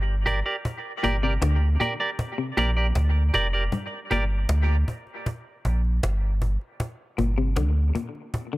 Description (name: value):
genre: dub reggae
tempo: 78 BPM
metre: 4/4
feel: straight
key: G minor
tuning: A4 = 440 Hz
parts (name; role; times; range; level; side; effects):
- warm sub bass; bass; 0.0-7.9 s; F1 to D2; -22 LUFS; equal; none
- clean electric guitar; accompaniment; 0.3-4.2 s; G4 to D5; -27 LUFS; right 2 dB; dub echo
- cajon; drums; 0.3-8.5 s; none; -30 LUFS; equal; none
- clean electric guitar; arpeggios; 1.0-8.6 s; G2 to D3; -31 LUFS; left 5 dB; dub echo
room: light reverb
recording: echo-heavy mix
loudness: -22 LUFS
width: side -19 dB against mid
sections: 0.0-8.6 A section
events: break 3.7-8.6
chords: 0.0 Gm